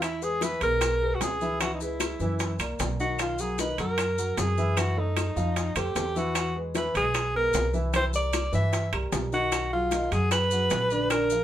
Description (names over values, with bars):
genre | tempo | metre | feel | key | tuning
Afro-Cuban jazz | 152 BPM | 4/4 | straight | unclear | A4 = 440 Hz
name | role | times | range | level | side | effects
clear alto saxophone | melody | 0.0-11.4 s | Eb4 to E5 | -27 LUFS | equal | none
upright bass | bass | 0.0-11.4 s | Bb1 to G2 | -30 LUFS | equal | none
bongos | percussion | 0.0-11.3 s | none | -35 LUFS | left 5 dB | none
claves | percussion | 0.0-11.3 s | none | -38 LUFS | left 1 dB | none
maracas | percussion | 0.0-11.4 s | none | -39 LUFS | left 5 dB | none
timbales | percussion | 0.0-11.3 s | none | -34 LUFS | right 5 dB | none
warm upright piano | accompaniment | 0.2-11.4 s | D3 to F5 | -32 LUFS | left 1 dB | none
room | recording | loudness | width
moderate studio ambience, RT60 0.4 s | band playing live in one room | -24 LUFS | side -11 dB against mid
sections
0.0-11.4 A section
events
none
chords
0.0 E; 1.6 Dbm7; 2.4 Gbaug7; 3.2 B6; 4.8 Gbm7; 5.6 Fadd9; 6.4 E; 7.9 C7; 9.5 B6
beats
| 0.02 0.42 0.81 1.21 | 1.61 2.00 2.40 2.79 | 3.19 3.58 3.98 4.38 | 4.77 5.17 5.57 5.96 | 6.36 6.75 7.15 7.54 | 7.94 8.34 8.73 9.13 | 9.53 9.92 10.32 10.71 | 11.11